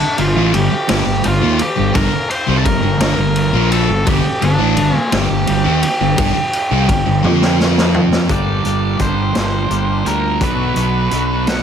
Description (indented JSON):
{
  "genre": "quiet-loud alternative rock",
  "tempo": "57 BPM (dotted quarters)",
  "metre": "6/8",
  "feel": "straight",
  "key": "G minor",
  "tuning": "A4 = 440 Hz",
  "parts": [
    { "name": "octave-fuzz lead guitar", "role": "melody", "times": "0.0-11.6 s", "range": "D4 to C6", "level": "-20 LUFS", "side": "equal", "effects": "distortion, plate reverb" },
    { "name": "fuzz guitar", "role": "riff", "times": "0.0-11.6 s", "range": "G2 to F4", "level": "-19 LUFS", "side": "right 11 dB", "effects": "distortion" },
    { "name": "sludgy distorted guitar", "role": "riff", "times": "0.0-8.3 s", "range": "G2 to F4", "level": "-20 LUFS", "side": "left 12 dB", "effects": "overdrive" },
    { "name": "fuzz fingered electric bass", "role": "bass", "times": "0.0-11.6 s", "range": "G1 to F2", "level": "-19 LUFS", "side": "left 1 dB", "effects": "overdrive" },
    { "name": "raw garage drum kit", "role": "drums", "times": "0.2-11.6 s", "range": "hi-hat, kick drum, ride cymbal, snare drum, toms", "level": "-19 LUFS", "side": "left 1 dB", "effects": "none" },
    { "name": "twangy electric guitar", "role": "arpeggios", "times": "8.3-11.6 s", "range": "G2 to G4", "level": "-24 LUFS", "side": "left 7 dB", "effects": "analog chorus, plate reverb, tape echo" }
  ],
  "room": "moderate small room reverb, RT60 0.5 s",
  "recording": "none",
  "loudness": "-13 LUFS",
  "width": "side -8 dB against mid",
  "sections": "0.0-8.3 A section; 8.3-11.6 B section",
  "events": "drum fill 7.2-8.3",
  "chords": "0.0 Gm; 7.2 F5; 8.3 Gm; 10.4 Bm"
}